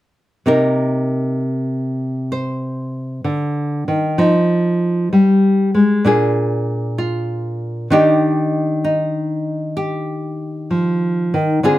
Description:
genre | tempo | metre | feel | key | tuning
solo jazz | 64 BPM | 4/4 | swing 68% on 8ths | C minor | A4 = 439 Hz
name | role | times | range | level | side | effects
nylon-string guitar | solo | 0.5-11.8 s | Bb2 to C5 | -15 LUFS | equal | none
room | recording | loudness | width
light reverb | close, detailed microphones | -15 LUFS | side -15 dB against mid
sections
0.5-11.8 A section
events
none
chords
0.5 Cm7; 4.2 Fm7; 6.0 Bb7; 7.9 Ebmaj7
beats
| 0.46 1.39 2.32 3.25 | 4.18 5.12 6.05 6.98 | 7.91 8.84 9.77 10.70 | 11.63

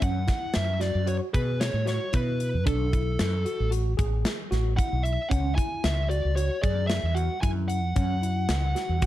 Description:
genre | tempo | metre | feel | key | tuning
progressive instrumental, band music in an uneven meter | 113 BPM | 5/4 | straight | F# minor | A4 = 440 Hz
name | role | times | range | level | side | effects
fuzz lead guitar | melody | 0.0-9.1 s | A4 to G#5 | -31 LUFS | equal | distortion
tine electric piano | arpeggios | 0.0-9.1 s | C#4 to G#4 | -34 LUFS | equal | medium stereo tremolo
mellow fretless electric bass | bass | 0.0-9.1 s | A1 to B2 | -26 LUFS | equal | lush chorus
tight metal drum kit | drums | 0.0-9.1 s | hi-hat, kick drum, snare drum | -29 LUFS | equal | none
room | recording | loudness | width
light reverb | dark, warm production | -24 LUFS | side -14 dB against mid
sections
0.0-9.1 A section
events
none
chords
0.0 F#sus2; 2.7 B7(no3); 5.3 C#m; 8.0 F#5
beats
| 0.02 0.55 1.08 1.61 2.14 | 2.67 3.19 3.73 4.25 4.79 | 5.32 5.85 6.38 6.91 7.44 | 7.97 8.50 9.03

